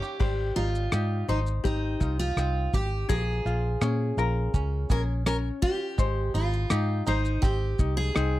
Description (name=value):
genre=acoustic pop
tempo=83 BPM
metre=4/4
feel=straight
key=Ab major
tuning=A4 = 440 Hz
part: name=picked steel-string acoustic guitar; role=melody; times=0.0-8.4 s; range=Eb4 to Bb4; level=-31 LUFS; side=right 1 dB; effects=slapback echo
part: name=ukulele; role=accompaniment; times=0.0-8.4 s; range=Db4 to Db5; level=-34 LUFS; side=left 9 dB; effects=none
part: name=bluegrass banjo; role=arpeggios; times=0.0-8.4 s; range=F3 to Ab4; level=-39 LUFS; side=right 7 dB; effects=none
part: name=cloth-damped thuddy drum kit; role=drums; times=0.0-8.3 s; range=crash cymbal, kick drum, rim click, shaker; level=-26 LUFS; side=equal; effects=none
part: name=vintage muted fingered electric bass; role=bass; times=0.2-8.4 s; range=Ab1 to Bb2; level=-27 LUFS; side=equal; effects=none
room=little or no reverb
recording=dry, close 1970s-style studio recording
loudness=-24 LUFS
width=side -16 dB against mid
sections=0.2-8.4 A section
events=none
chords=0.2 Abmaj7; 3.1 Bbm7; 6.0 Abmaj7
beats=| 0.20 0.93 1.65 2.37 | 3.10 3.82 4.54 5.26 | 5.99 6.71 7.43 8.16